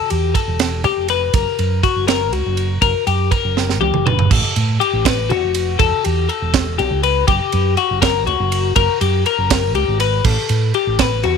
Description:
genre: math rock and midwest emo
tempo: 81 BPM (dotted quarters)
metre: 6/8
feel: straight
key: unclear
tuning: A4 = 441 Hz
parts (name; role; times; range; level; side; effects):
- twelve-string electric guitar; arpeggios; 0.0-11.4 s; F#4 to B4; -18 LUFS; left 14 dB; tape echo
- fingered electric bass; bass; 0.1-11.3 s; E1 to A2; -19 LUFS; right 2 dB; none
- crisp fusion drum kit; drums; 0.1-11.4 s; crash cymbal, kick drum, ride cymbal, snare drum, toms; -20 LUFS; right 6 dB; none
room: studio reverb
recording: 1960s-style stereo with parts hard left and right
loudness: -14 LUFS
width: side -6 dB against mid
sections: 0.0-4.3 A section; 4.3-11.4 B section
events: drum fill 3.6-4.3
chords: 0.0 Em; 1.3 F#; 4.3 Asus2; 5.8 Em; 7.3 F#; 10.3 Asus2

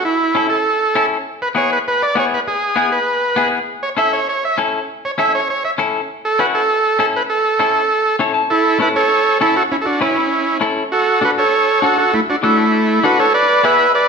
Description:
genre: latin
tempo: 199 BPM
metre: 4/4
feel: straight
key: A major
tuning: A4 = 436 Hz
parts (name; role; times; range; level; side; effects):
- overdriven combo organ; melody; 0.0-14.1 s; A3 to E5; -14 LUFS; right 2 dB; none
- semi-hollow electric guitar; accompaniment; 0.3-13.9 s; B3 to A5; -20 LUFS; left 4 dB; none
room: wet stone room reverb, RT60 1.3 s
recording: band playing live in one room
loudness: -13 LUFS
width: side -5 dB against mid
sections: 0.0-8.5 A section; 8.5-14.1 B section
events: clean electric guitar fill 8.1-8.5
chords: 0.0 A; 1.3 E; 3.7 A; 10.9 D; 13.3 E7

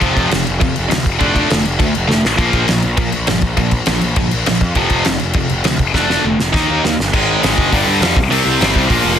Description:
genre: punk rock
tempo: 202 BPM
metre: 4/4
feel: straight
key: unclear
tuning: A4 = 440 Hz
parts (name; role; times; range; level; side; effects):
- tight distorted guitar; riff; 0.0-9.2 s; F2 to Eb4; -15 LUFS; left 1 dB; distortion
- fuzz picked electric bass; bass; 0.0-9.2 s; F1 to Bb2; -20 LUFS; equal; overdrive
- loose indie drum kit; drums; 0.0-9.0 s; crash cymbal, hi-hat, kick drum, snare drum; -17 LUFS; equal; none
room: little or no reverb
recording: dense, heavily limited modern master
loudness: -12 LUFS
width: side -9 dB against mid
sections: 0.0-7.1 A section; 7.1-9.2 B section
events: drum fill 2.1, 6.0-7.1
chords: 0.0 F5; 1.2 Dm/F; 2.4 Bb5; 4.8 F5; 6.0 Dm/F; 6.5 Eb; 7.1 Ab5; 7.7 G5; 8.2 C5

